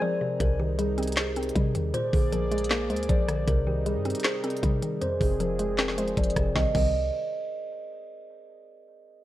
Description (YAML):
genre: hip hop, trap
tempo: 156 BPM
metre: 4/4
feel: half-time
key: C minor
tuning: A4 = 440 Hz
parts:
  - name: kalimba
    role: melody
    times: 0.0-6.9 s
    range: G4 to Eb5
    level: -30 LUFS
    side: right 1 dB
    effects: low-pass filter, ping-pong delay
  - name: mallet-like synth pluck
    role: accompaniment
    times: 0.0-6.9 s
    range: F2 to C5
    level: -31 LUFS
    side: left 2 dB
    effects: chorus, low-pass filter
  - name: warm analog pad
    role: sustained chords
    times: 0.0-6.7 s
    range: C3 to D5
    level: -37 LUFS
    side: equal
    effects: chorus, low-pass filter
  - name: clean 808-style bass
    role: bass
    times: 0.4-7.1 s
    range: F1 to C3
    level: -30 LUFS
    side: equal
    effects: none
  - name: trap drum kit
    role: drums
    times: 0.4-6.8 s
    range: crash cymbal, handclaps, hi-hat, kick drum, rim click, snare drum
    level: -27 LUFS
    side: equal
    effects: none
room: light reverb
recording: worn, warbling old tape, cassette tape, warbly pitch drift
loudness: -24 LUFS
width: side -14 dB against mid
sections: 0.4-6.6 A section; 6.6-8.1 B section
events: break 0.0-0.4; filter sweep 0.4-6.6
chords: 0.4 Cm; 1.9 Bb7; 3.5 Cm; 5.0 Fm; 6.6 Cm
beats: 0.02 | 0.40 0.79 1.17 1.55 | 1.94 2.32 2.71 3.09 | 3.48 3.86 4.25 4.63 | 5.02 5.40 5.79 6.17 | 6.55 6.94